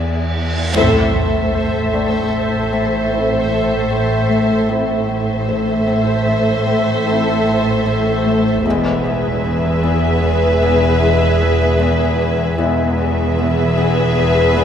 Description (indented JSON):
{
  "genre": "cinematic, suspense film score",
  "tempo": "76 BPM",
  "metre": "5/4",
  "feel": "straight",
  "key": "A harmonic minor",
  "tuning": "A4 = 440 Hz",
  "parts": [
    { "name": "rich symphonic violin section", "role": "melody", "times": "0.0-14.6 s", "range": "E5", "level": "-24 LUFS", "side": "equal", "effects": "none" },
    { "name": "rich symphonic violin section", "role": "second line", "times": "0.0-14.6 s", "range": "G#4 to D5", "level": "-22 LUFS", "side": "left 2 dB", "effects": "none" },
    { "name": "bubbling stepped-filter texture", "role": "sustained chords", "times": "0.0-14.6 s", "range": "G#4 to E5", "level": "-24 LUFS", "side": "equal", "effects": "chorus, built-in reverb" },
    { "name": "Celtic harp", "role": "riff", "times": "0.0-14.6 s", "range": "E2 to A3", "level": "-21 LUFS", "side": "left 4 dB", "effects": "none" },
    { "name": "rich symphonic cello section", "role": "bass", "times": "0.0-14.6 s", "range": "E2 to A2", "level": "-22 LUFS", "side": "right 2 dB", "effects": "none" },
    { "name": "metallic inharmonic drone", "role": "drone", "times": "0.0-14.6 s", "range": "A1 to E2", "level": "-23 LUFS", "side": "equal", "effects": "chorus, built-in reverb, phaser" },
    { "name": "reverse cymbal and impact", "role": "sound effects", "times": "0.0-4.7 s", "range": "none", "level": "-25 LUFS", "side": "right 1 dB", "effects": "none" },
    { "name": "rich symphonic viola section", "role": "accompaniment", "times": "0.8-14.6 s", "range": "G#4 to A4", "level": "-24 LUFS", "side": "equal", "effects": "none" },
    { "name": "warm French horn section", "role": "sustained chords", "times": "0.8-12.9 s", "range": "G#3 to E4", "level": "-26 LUFS", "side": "left 2 dB", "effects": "none" },
    { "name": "rich symphonic double bass section", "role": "bass", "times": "0.8-14.6 s", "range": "E1 to A1", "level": "-23 LUFS", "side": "right 3 dB", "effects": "none" },
    { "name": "felt-muted upright piano", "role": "texture", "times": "1.9-8.7 s", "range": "C5 to D5", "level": "-34 LUFS", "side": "left 1 dB", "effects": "none" }
  ],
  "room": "wet scoring stage reverb, RT60 1.9 s",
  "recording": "none",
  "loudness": "-14 LUFS",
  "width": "side -8 dB against mid",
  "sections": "0.8-14.6 A section",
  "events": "reverse cymbal 0.0-0.8; band accent 0.8-1.5; impact 0.8-4.7",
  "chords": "0.0 E7; 0.8 Am; 8.6 E"
}